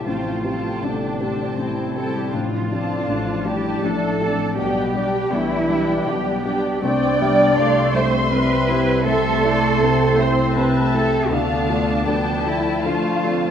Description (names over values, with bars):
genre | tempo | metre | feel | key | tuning
cinematic, emotional film score for orchestra | 80 BPM | 3/4 | rubato | unclear | A4 = 439 Hz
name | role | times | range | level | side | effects
muted symphonic violin section | melody | 0.0-13.5 s | G5 to C6 | -30 LUFS | left 3 dB | none
clear clarinet | second line | 0.0-13.5 s | G3 to E4 | -28 LUFS | left 1 dB | none
muted symphonic violin section | second line | 0.0-13.5 s | C5 to G5 | -30 LUFS | left 1 dB | none
felt-muted upright piano | accompaniment | 0.0-13.5 s | A1 to E5 | -25 LUFS | left 2 dB | none
muted studio viola section | accompaniment | 0.0-13.5 s | C3 to B4 | -29 LUFS | right 2 dB | none
mellow French horn section | sustained chords | 0.0-13.5 s | C3 to E4 | -26 LUFS | left 3 dB | none
concert harp | arpeggios | 0.0-13.5 s | A2 to E5 | -29 LUFS | left 6 dB | none
muted studio cello section | bass | 0.0-13.5 s | C4 to D5 | -23 LUFS | right 2 dB | none
muted studio double bass section | bass | 0.1-13.5 s | A1 to D2 | -28 LUFS | right 6 dB | none
room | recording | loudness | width
wet concert hall reverb, RT60 1.9 s | none | -17 LUFS | side -8 dB against mid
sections
0.0-13.5 A section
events
none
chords
0.1 Fadd9/A; 2.3 Dm/A; 4.6 G/B; 6.8 C; 9.1 Am/C; 11.3 Dm